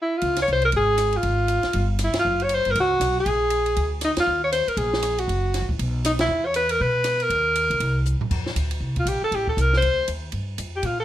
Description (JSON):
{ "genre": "jazz, small-group swing and bop", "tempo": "238 BPM", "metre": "4/4", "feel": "swing 60% on 8ths", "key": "unclear", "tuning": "A4 = 440 Hz", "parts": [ { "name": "clear alto saxophone", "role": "melody", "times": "0.0-11.0 s", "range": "Eb4 to Db5", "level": "-21 LUFS", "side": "equal", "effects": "none" }, { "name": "upright bass", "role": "bass", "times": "0.2-11.0 s", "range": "Gb1 to B2", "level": "-25 LUFS", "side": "equal", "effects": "none" }, { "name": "compact cocktail drum kit", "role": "drums", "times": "0.2-10.9 s", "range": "crash cymbal, hi-hat, kick drum, ride cymbal, rim click, snare drum, toms", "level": "-31 LUFS", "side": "right 1 dB", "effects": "none" } ], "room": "light reverb", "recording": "none", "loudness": "-20 LUFS", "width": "side -12 dB against mid", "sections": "0.2-8.3 A section; 8.3-11.0 B section", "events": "stop 0.0; band accent 2.1, 4.1, 6.2; drum fill 8.1; alto saxophone solo 8.3-11.0", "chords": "0.2 Db5; 1.2 Fm/Ab; 1.7 Em/G; 2.3 Gb5; 3.3 Bb7; 4.3 Eb5; 5.3 Gbm; 5.8 N.C.; 6.3 E5; 7.3 Eb5; 7.8 N.C.; 8.3 F5; 9.3 Am; 9.8 Cmadd9/D; 10.3 Gm7", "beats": "| 0.22 0.48 0.73 0.98 | 1.24 1.49 1.75 2.00 | 2.25 2.50 2.76 3.01 | 3.26 3.52 3.77 4.02 | 4.27 4.53 4.78 5.03 | 5.28 5.54 5.79 6.04 | 6.29 6.55 6.80 7.05 | 7.30 7.55 7.81 8.06 | 8.31 8.56 8.82 9.07 | 9.32 9.57 9.83 10.08 | 10.33 10.58 10.84" }